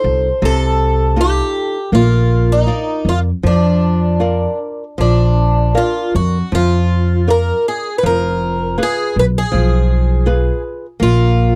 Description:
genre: fado-style ballad.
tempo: 80 BPM.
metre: 4/4.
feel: rubato.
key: unclear.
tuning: A4 = 440 Hz.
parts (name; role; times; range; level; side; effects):
picked twelve-string acoustic guitar; melody; 0.0-11.6 s; D4 to C5; -20 LUFS; equal; none.
flamenco guitar; accompaniment; 0.0-11.6 s; C3 to F5; -22 LUFS; equal; none.
upright bass; bass; 0.0-11.6 s; F1 to F2; -17 LUFS; equal; none.
room: little or no reverb.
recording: dry, close 1970s-style studio recording.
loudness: -15 LUFS.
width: mono.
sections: 0.0-11.6 A section.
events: none.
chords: 0.0 F7; 1.9 Bb; 8.0 Fdim; 11.0 Bb5.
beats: 0.42 1.17 | 1.92 2.67 3.44 4.22 | 4.99 5.76 6.53 7.29 | 8.04 8.79 9.53 10.27 | 11.00.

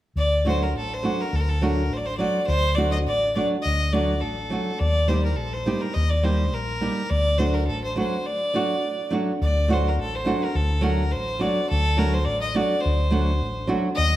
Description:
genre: balkan folk, Balkan wedding band.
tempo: 104 BPM.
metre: 2/4.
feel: swing 54% on 16ths.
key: D phrygian dominant.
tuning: A4 = 440 Hz.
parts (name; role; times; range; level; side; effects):
clear fiddle; melody; 0.2-14.2 s; A4 to Eb5; -26 LUFS; equal; none.
hollow-body short-scale fingered electric bass; bass; 0.2-14.2 s; A1 to Eb2; -24 LUFS; equal; none.
nylon-string guitar; accompaniment; 0.4-13.9 s; F#3 to G4; -26 LUFS; right 2 dB; none.
room: wet recital hall reverb, RT60 1.7 s.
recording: none.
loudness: -21 LUFS.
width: side -14 dB against mid.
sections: 0.2-9.4 A section; 9.4-14.2 A section.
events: break 8.3-9.4.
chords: 0.2 D; 4.8 Eb; 7.1 D.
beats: | 0.17 0.74 | 1.32 1.91 | 2.48 3.06 | 3.64 4.22 | 4.80 5.38 | 5.96 6.53 | 7.11 7.68 | 8.26 8.83 | 9.41 9.98 | 10.55 11.12 | 11.70 12.27 | 12.83 13.40 | 13.97.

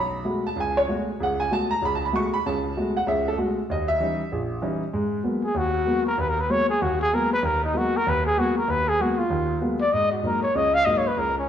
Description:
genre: jazz.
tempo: 193 BPM.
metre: 4/4.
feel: swing 62% on 8ths.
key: G# dorian from 4.9 s.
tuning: A4 = 440 Hz.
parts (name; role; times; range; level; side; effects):
warm grand piano; accompaniment; 0.0-11.4 s; A#1 to C#6; -24 LUFS; equal; none.
breathy trumpet; melody; 5.4-11.5 s; C#4 to E#5; -22 LUFS; left 1 dB; none.
room: wet stone room reverb, RT60 1.3 s.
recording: band playing live in one room.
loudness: -21 LUFS.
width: side -9 dB against mid.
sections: 0.0-4.9 A section; 4.9-11.5 A section.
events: trumpet solo 4.9-11.5.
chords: 0.0 F#madd9/B; 3.7 D#7b9; 4.9 G#m9; 9.9 F#6.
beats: 0.26 0.57 0.88 | 1.19 1.50 1.82 2.13 | 2.44 2.75 3.06 3.37 | 3.69 4.00 4.31 4.62 | 4.93 5.24 5.55 5.87 | 6.18 6.49 6.80 7.11 | 7.42 7.74 8.05 8.36 | 8.67 8.98 9.29 9.60 | 9.91 10.23 10.54 10.85 | 11.16 11.47.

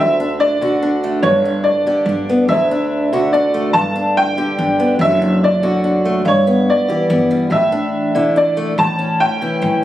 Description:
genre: acoustic folk duo or small band.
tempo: 48 BPM (dotted quarters).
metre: 6/8.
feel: straight.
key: D major.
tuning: A4 = 441 Hz.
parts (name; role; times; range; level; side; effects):
warm upright piano; melody; 0.0-9.8 s; C#5 to A5; -17 LUFS; equal; none.
fingerpicked acoustic archtop guitar; accompaniment; 0.0-9.8 s; D2 to G4; -17 LUFS; equal; none.
upright bass; bass; 0.0-9.8 s; F#1 to D2; -21 LUFS; equal; none.
room: light reverb.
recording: recorded on a phone in the room, studio reverb.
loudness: -13 LUFS.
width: side -13 dB against mid.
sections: 0.0-9.8 A section.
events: none.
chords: 0.0 D; 1.2 G5; 2.5 D; 3.7 G; 5.0 D/F#; 6.3 Em/G; 7.5 Asus4; 8.8 A.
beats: 1.23 | 2.48 3.74 | 5.00 6.25 | 7.51 8.77.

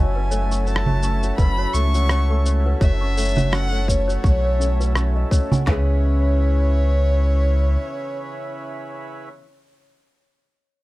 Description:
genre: folktronica.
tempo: 84 BPM.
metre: 4/4.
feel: swing 56% on 16ths.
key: C# minor.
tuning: A4 = 440 Hz.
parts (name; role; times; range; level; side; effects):
dark violin; melody; 0.0-9.3 s; C#5 to C#6; -28 LUFS; left 1 dB; none.
small celesta; second line; 0.0-10.8 s; C#4 to C#6; -32 LUFS; left 3 dB; digital delay, plate reverb.
mellow accordion; sustained chords; 0.0-9.3 s; C#3 to B4; -32 LUFS; right 1 dB; plate reverb.
fingerpicked old ladder-braced acoustic guitar; arpeggios; 0.0-9.5 s; F#2 to G#4; -28 LUFS; left 1 dB; digital delay.
warm sub bass; bass; 0.0-7.8 s; F#1 to C#2; -19 LUFS; equal; none.
electronic cabasa, rim click and congas; drums; 0.3-5.6 s; none; -24 LUFS; right 2 dB; none.
organic electronic drum kit; drums; 1.4-5.9 s; handclaps, kick drum, snare drum; -18 LUFS; equal; none.
room: little or no reverb.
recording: dark, warm production.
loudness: -17 LUFS.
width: side -18 dB against mid.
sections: 0.0-5.7 A section; 5.7-8.5 B section.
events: none.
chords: 0.0 F#m7; 5.7 C#m7.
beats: 0.67 1.38 2.10 | 2.81 3.53 4.24 4.96 | 5.67 6.38 7.10 7.81.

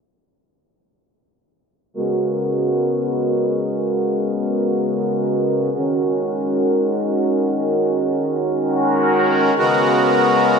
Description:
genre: hip hop.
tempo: free time.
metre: none.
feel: none.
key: G# minor.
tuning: A4 = 440 Hz.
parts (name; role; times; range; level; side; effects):
accordion; solo; 2.0-10.6 s; C#3 to A#4; -16 LUFS; equal; light tremolo tuning, analog delay.
room: wet lush hall reverb, RT60 2.5 s.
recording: dreamy mix soaked in reverb, low-pass filter.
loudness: -16 LUFS.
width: side -5 dB against mid.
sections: 2.0-9.6 A section; 9.6-10.6 B section.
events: filter sweep 2.0-9.6.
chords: 2.0 G#m11; 5.8 F#69; 9.6 G#m11.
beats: free time.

